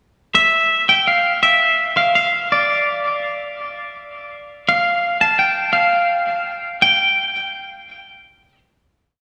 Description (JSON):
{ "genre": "rock", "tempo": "55 BPM (dotted quarters)", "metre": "6/8", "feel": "straight", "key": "unclear", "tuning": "A4 = 438 Hz", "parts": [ { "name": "twangy electric guitar", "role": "solo", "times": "0.3-8.6 s", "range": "D5 to A5", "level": "-17 LUFS", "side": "equal", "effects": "diffuse ambient delay" } ], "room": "wet lush hall reverb, RT60 3.3 s", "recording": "dreamy mix soaked in reverb, small room ambience", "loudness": "-16 LUFS", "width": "mono", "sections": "0.3-9.0 A section", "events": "fade-out 6.8-9.0", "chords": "none" }